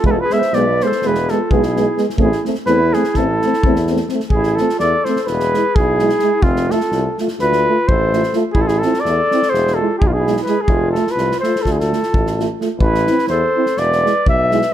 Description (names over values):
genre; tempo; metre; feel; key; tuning
balkan folk, Balkan brass band; 254 BPM (eighths); 9/8; straight; A harmonic minor; A4 = 440 Hz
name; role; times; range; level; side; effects
mellow flugelhorn; melody; 0.0-14.7 s; F4 to E5; -18 LUFS; equal; none
dark clarinet; second line; 0.0-14.7 s; C4 to C5; -23 LUFS; right 1 dB; none
mellow euphonium; accompaniment; 0.0-14.6 s; G#3 to C4; -23 LUFS; right 6 dB; none
clear tuba; bass; 0.0-14.6 s; E1 to E2; -21 LUFS; equal; none
natural country drum kit; percussion; 0.0-14.7 s; kick drum, snare drum; -21 LUFS; equal; none
mellow euphonium; accompaniment; 0.1-14.6 s; B3 to F4; -24 LUFS; left 6 dB; none
room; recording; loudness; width
light reverb; close, detailed microphones; -14 LUFS; side -11 dB against mid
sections
0.0-4.3 A section; 4.3-14.7 B section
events
none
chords
0.0 E; 2.2 Am; 5.3 E; 6.4 F; 7.4 Dm; 8.6 Am; 9.5 E; 10.7 F; 11.6 Dm; 12.8 Am; 13.7 E